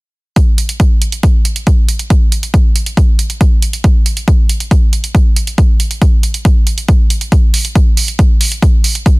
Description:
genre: trance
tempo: 138 BPM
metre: 4/4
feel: straight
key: none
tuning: none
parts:
  - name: electronic hi-hat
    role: drums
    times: 0.4-9.1 s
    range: none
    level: -19 LUFS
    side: right 4 dB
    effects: overdrive
  - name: electronic kick drum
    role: drums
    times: 0.4-9.1 s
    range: none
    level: -9 LUFS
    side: equal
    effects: overdrive
room: little or no reverb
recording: dense, heavily limited modern master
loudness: -9 LUFS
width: side -26 dB against mid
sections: 0.4-9.2 A section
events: none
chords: none

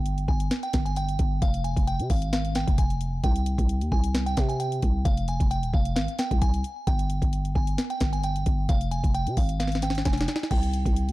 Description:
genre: hip hop, trap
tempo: 132 BPM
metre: 4/4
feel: half-time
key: unclear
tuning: A4 = 439 Hz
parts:
  - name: delicate synth tine bell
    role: melody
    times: 0.0-11.1 s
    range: F5 to Ab5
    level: -32 LUFS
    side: right 1 dB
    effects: chorus
  - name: growling 808-style bass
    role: bass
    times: 0.0-11.1 s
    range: Eb1 to C3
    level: -27 LUFS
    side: equal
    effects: none
  - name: trap drum kit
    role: drums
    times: 0.1-11.1 s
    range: crash cymbal, hi-hat, kick drum, snare drum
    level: -25 LUFS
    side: equal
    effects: none
room: digital ambience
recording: dark, warm production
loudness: -23 LUFS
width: side -18 dB against mid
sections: 0.0-10.5 A section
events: drum fill 9.6-10.5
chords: 0.0 N.C.; 1.4 Fm; 3.2 C5; 5.1 Fm; 6.9 N.C.; 8.7 Fm; 10.5 C5

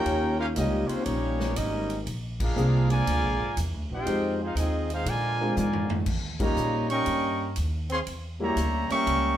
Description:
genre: jazz, big band swing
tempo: 120 BPM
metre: 4/4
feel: swing 67% on 8ths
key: unclear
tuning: A4 = 439 Hz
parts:
  - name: warm trumpet section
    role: melody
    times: 0.0-9.4 s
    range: Ab3 to Db6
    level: -29 LUFS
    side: right 1 dB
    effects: none
  - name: clear trombone section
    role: second line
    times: 0.0-9.4 s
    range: Db3 to G4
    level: -32 LUFS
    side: equal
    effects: none
  - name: warm grand piano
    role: accompaniment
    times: 0.0-8.6 s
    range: G3 to Bb4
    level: -30 LUFS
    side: left 1 dB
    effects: none
  - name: upright bass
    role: bass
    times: 0.0-9.4 s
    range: Ab1 to Bb2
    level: -29 LUFS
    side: equal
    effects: none
  - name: swinging big-band drum kit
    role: drums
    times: 0.1-9.2 s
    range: crash cymbal, hi-hat, kick drum, ride cymbal, snare drum, toms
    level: -35 LUFS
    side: equal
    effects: none
room: wet club reverb, RT60 0.8 s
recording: heard from further back in the room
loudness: -24 LUFS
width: side -11 dB against mid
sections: 0.0-9.4 A section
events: band accent 2.3, 6.3; drum fill 5.6-6.1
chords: 0.1 Eb7; 2.1 Bb7; 4.1 Fm7; 5.1 Bb7; 6.1 Eb7; 8.1 Edim7

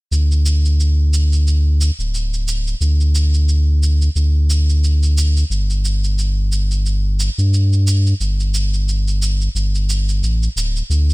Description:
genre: sunset chillout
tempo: 89 BPM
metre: 4/4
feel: swing 57% on 16ths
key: unclear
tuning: A4 = 440 Hz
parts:
  - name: warm sub bass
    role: bass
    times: 0.1-11.1 s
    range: D1 to G2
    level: -14 LUFS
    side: equal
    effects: tube saturation
  - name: cabasa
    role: drums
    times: 0.1-11.1 s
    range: none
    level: -26 LUFS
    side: right 2 dB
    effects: none
room: little or no reverb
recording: bright 1980s-style digital production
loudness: -14 LUFS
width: side -22 dB against mid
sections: 0.1-11.1 A section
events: filter sweep on sub bass 0.1-11.1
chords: none

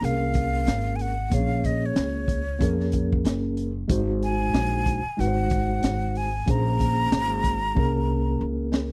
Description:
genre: hip hop, jazz-hop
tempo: 93 BPM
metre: 4/4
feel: swing 59% on 16ths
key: Bb minor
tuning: A4 = 440 Hz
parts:
  - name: breathy mellow silver concert flute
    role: melody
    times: 0.0-8.4 s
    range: Db5 to Bb5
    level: -31 LUFS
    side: equal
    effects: none
  - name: mellow tine electric piano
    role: accompaniment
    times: 0.0-8.9 s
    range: Ab3 to Db5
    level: -30 LUFS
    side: equal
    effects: none
  - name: upright bass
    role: bass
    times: 0.0-8.9 s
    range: Gb1 to F2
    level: -29 LUFS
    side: equal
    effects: none
  - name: crunchy breakbeat drum kit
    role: drums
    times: 0.0-8.9 s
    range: hi-hat, kick drum, snare drum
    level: -28 LUFS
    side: equal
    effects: none
room: little or no reverb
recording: dry, close 1970s-style studio recording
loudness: -24 LUFS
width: mono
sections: 0.0-8.9 A section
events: drum fill 7.8-8.9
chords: 0.0 Bbm9; 3.9 Ab7; 6.5 Bbm9

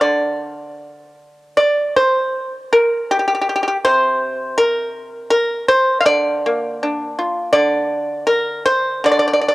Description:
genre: chinese traditional, Chinese solo plucked strings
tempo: 80 BPM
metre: 4/4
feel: rubato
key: D jue mode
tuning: A4 = 441 Hz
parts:
  - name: pipa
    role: solo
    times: 0.0-9.5 s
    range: C3 to F5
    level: -15 LUFS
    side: equal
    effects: none
room: moderate spring reverb, RT60 2.6 s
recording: home recording on cassette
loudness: -15 LUFS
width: side -18 dB against mid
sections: 0.0-9.5 A section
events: none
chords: none

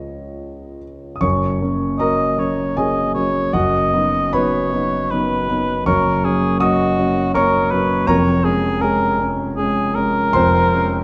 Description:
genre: classical, romantic duo for cor anglais and grand piano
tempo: 79 BPM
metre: 3/4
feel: uneven beats, rubato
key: F# major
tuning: A4 = 440 Hz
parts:
  - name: dark concert grand piano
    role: accompaniment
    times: 0.0-11.0 s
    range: E#1 to Eb6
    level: -20 LUFS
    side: equal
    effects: none
  - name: warm cor anglais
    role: melody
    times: 2.0-11.0 s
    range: F#4 to D#5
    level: -22 LUFS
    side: equal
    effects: none
room: wet scoring stage reverb, RT60 1.7 s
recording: dark, warm production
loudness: -18 LUFS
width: mono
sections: 0.0-1.2 A section; 1.2-11.0 B section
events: none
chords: 0.0 Db; 1.2 F#; 3.5 B/F#; 5.9 F#; 8.1 C#/E#; 10.3 Db/F

